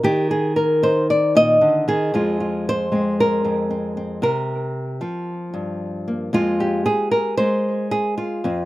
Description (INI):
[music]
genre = folk, solo fingerstyle acoustic guitar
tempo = 114 BPM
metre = 4/4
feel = straight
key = F dorian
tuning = A4 = 440 Hz
[part]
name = nylon-string guitar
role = solo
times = 0.0-8.7 s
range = F2 to Eb5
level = -18 LUFS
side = equal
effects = slapback echo
[sound]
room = little or no reverb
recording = recorded outdoors, with no room sound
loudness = -18 LUFS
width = side -17 dB against mid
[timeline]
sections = 0.0-6.3 A section; 6.3-8.7 B section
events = none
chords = 0.0 Eb; 2.1 Fm; 4.2 C7sus4; 6.3 Fm